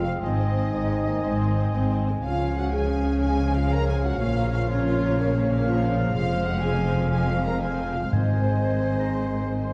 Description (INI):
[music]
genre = cinematic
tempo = 121 BPM (dotted quarters)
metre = 12/8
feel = straight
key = unclear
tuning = A4 = 440 Hz
[part]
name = warm symphonic violin section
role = melody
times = 0.0-9.7 s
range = C5 to Bb5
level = -40 LUFS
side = equal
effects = none
[part]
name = bright concert flute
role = second line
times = 0.0-9.7 s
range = C5 to Bb5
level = -39 LUFS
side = equal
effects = none
[part]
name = mellow clarinet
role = second line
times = 0.0-9.7 s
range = C5 to Eb5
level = -40 LUFS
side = equal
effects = none
[part]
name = warm oboe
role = second line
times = 0.0-9.7 s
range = Eb5 to C6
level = -40 LUFS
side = equal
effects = none
[part]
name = rich symphonic viola section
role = accompaniment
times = 0.0-9.7 s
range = F3 to F4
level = -36 LUFS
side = equal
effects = none
[part]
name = clear French horn section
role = sustained chords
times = 0.0-9.7 s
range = C4 to Bb4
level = -32 LUFS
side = equal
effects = none
[part]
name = mellow trombone section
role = sustained chords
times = 0.0-9.7 s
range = Db3 to Eb4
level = -37 LUFS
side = equal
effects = none
[part]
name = warm trumpet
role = stabs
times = 0.0-9.7 s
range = F5 to Ab5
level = -37 LUFS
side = equal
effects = none
[part]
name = rich symphonic cello section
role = bass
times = 0.0-9.7 s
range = F2 to Db3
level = -30 LUFS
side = equal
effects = none
[part]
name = warm symphonic double bass section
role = bass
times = 0.0-9.7 s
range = F1 to Db2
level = -29 LUFS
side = equal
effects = none
[part]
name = rich chamber violin section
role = second line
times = 0.1-9.7 s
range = Ab4 to Bb5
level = -42 LUFS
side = equal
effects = none
[part]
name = timpani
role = percussion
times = 8.1-8.6 s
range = Ab2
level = -29 LUFS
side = equal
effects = none
[sound]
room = moderate scoring stage reverb, RT60 1.8 s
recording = dark, warm production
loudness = -24 LUFS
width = mono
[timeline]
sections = 0.0-9.7 A section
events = none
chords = 0.2 Ab; 2.2 Db; 4.2 Bbm; 6.1 Fm; 8.1 Ab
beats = | 0.24 0.74 1.24 1.74 | 2.24 2.74 3.23 3.72 | 4.21 4.70 5.18 5.66 | 6.15 6.63 7.12 7.61 | 8.12 8.63 9.14 9.65